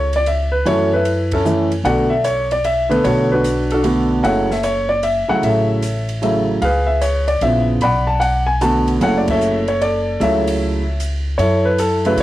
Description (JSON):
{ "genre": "jazz piano trio", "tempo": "151 BPM", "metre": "3/4", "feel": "swing 66% on 8ths", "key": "F# minor", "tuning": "A4 = 442 Hz", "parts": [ { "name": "warm concert grand piano", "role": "melody", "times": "0.0-12.2 s", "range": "C#3 to B5", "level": "-16 LUFS", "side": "equal", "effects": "cassette tape" }, { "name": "upright bass", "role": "bass", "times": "0.0-12.2 s", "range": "F#1 to C#3", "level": "-21 LUFS", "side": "equal", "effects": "none" }, { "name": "open jazz drum kit", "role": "drums", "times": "0.1-12.2 s", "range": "hi-hat, kick drum, ride cymbal, snare drum", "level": "-32 LUFS", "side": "right 1 dB", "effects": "none" } ], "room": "light reverb, studio reverb", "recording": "home recording on cassette", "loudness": "-14 LUFS", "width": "side -15 dB against mid", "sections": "0.0-11.4 A section", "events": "band accent 1.3, 9.2", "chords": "0.0 F#m7; 1.9 Bm7; 4.2 F#m7; 6.6 C#7#9; 7.8 Bm7; 9.0 F#m7" }